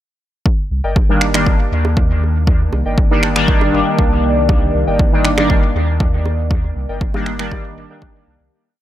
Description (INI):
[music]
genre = dub techno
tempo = 119 BPM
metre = 4/4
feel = straight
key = C minor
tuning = A4 = 445 Hz
[part]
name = deep dark ambient pad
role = sustained chords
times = 1.6-8.5 s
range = Eb3 to D5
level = -24 LUFS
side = equal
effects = chorus, built-in reverb, sidechain pumping
[part]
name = electronic kick drum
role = drums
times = 0.5-8.1 s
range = none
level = -15 LUFS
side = equal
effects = overdrive
[part]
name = warm sub bass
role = bass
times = 0.7-8.5 s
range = G1 to Eb2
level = -19 LUFS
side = equal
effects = sidechain pumping
[part]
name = warbly lo-fi synth keys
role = riff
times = 0.8-8.0 s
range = Bb4 to G5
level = -29 LUFS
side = equal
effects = none
[part]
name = bongos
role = percussion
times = 1.0-8.1 s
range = none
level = -30 LUFS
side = right 4 dB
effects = overdrive, sidechain pumping on perc, dub echo
[part]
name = resonant sweep polysynth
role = stabs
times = 1.1-8.5 s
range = Eb3 to D4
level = -18 LUFS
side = left 1 dB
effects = chorus, phaser, sidechain pumping, dub echo
[part]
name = electronic finger snaps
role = drums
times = 1.2-7.5 s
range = none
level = -22 LUFS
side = right 1 dB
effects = overdrive, dub echo
[sound]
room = little or no reverb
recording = none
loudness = -13 LUFS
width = side -13 dB against mid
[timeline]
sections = 0.5-8.5 groove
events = fade-out 5.8-8.5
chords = 0.5 Cm9